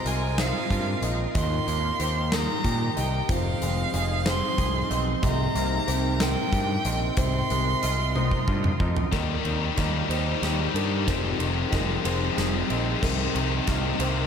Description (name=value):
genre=post-rock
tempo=62 BPM (dotted quarters)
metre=6/8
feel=straight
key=unclear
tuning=A4 = 438 Hz
part: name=clear violin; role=melody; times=0.0-8.8 s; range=F5 to C6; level=-30 LUFS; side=right 2 dB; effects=ping-pong delay
part: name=icy glass pad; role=sustained chords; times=0.0-14.3 s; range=C3 to Bb4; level=-33 LUFS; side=right 1 dB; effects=chorus, built-in reverb
part: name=felt-muted upright piano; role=arpeggios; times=0.0-14.3 s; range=Bb4 to Eb5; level=-35 LUFS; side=right 3 dB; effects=ping-pong delay
part: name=twangy electric guitar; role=arpeggios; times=0.0-14.3 s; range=F2 to Ab4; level=-33 LUFS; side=left 2 dB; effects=ensemble chorus, ping-pong delay
part: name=growling picked electric bass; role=bass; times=0.0-14.2 s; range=F1 to Bb2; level=-27 LUFS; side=equal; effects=overdrive
part: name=huge arena drum kit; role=drums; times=0.1-14.2 s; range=crash cymbal, hi-hat, kick drum, ride cymbal, snare drum, toms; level=-29 LUFS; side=equal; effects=none
part: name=tight distorted guitar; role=riff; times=9.1-14.3 s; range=F2 to G3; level=-28 LUFS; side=left 8 dB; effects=distortion
room=moderate huge ambient reverb, RT60 3.9 s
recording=dreamy mix soaked in reverb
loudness=-23 LUFS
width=side -7 dB against mid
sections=0.0-9.1 A section; 9.1-14.3 B section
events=drum fill 8.2-9.1, 9.1-14.3; build-up 9.1-14.3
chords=0.0 Ab6/C; 1.4 Eb; 3.3 Fm7; 5.2 Cm7; 7.2 Ab6/C; 9.1 Eb; 11.1 Fm7; 13.0 Cm7